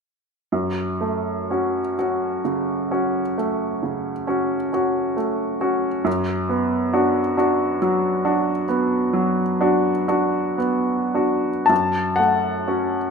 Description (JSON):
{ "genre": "classical, romantic nocturne for solo piano", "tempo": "34-46 BPM (dotted quarters)", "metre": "12/8", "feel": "rubato", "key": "F# minor", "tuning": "A4 = 440 Hz", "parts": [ { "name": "clear baby grand piano", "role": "solo", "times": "0.5-13.1 s", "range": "F#2 to A5", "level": "-19 LUFS", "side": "equal", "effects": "none" } ], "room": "wet stone room reverb, RT60 1.1 s", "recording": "none", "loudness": "-19 LUFS", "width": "side -5 dB against mid", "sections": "0.5-11.7 A section; 11.7-13.1 B section", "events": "none", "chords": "0.5 F#m; 6.1 Bm/F#; 11.7 F#m" }